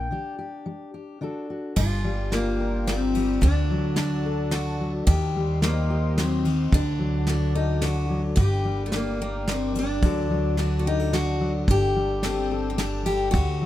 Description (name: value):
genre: acoustic folk duo or small band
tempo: 109 BPM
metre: 3/4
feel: straight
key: G harmonic minor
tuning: A4 = 440 Hz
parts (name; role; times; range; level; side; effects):
- mandolin; second line; 0.0-1.2 s; G5; -35 LUFS; left 3 dB; none
- fingerpicked steel-string acoustic guitar; accompaniment; 0.0-13.7 s; G2 to Bb4; -29 LUFS; left 2 dB; none
- upright bass; bass; 0.0-13.7 s; G1 to Eb2; -26 LUFS; equal; none
- picked steel-string acoustic guitar; melody; 1.8-13.7 s; A3 to G4; -27 LUFS; left 2 dB; none
- dark analog pad; sustained chords; 2.1-13.7 s; F4 to D6; -38 LUFS; equal; chorus
- soft brush drum kit; drums; 1.8-13.5 s; crash cymbal, kick drum, ride cymbal, snare drum; -29 LUFS; equal; none
room: little or no reverb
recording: rough home demo mix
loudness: -22 LUFS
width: side -13 dB against mid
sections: 0.0-1.8 A section; 1.8-13.7 B section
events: mandolin solo 0.0-1.8; break 0.1-1.8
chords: 0.1 Dsus4; 1.2 D; 1.8 Gm7; 3.4 D; 5.1 Cm/Eb; 6.7 D; 8.4 Gm; 10.0 D; 11.7 Gsus2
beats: | 0.12 0.67 1.22 | 1.77 2.33 2.88 | 3.43 3.98 4.53 | 5.08 5.63 6.18 | 6.73 7.28 7.83 | 8.39 8.94 9.49 | 10.04 10.59 11.14 | 11.69 12.24 12.79 | 13.34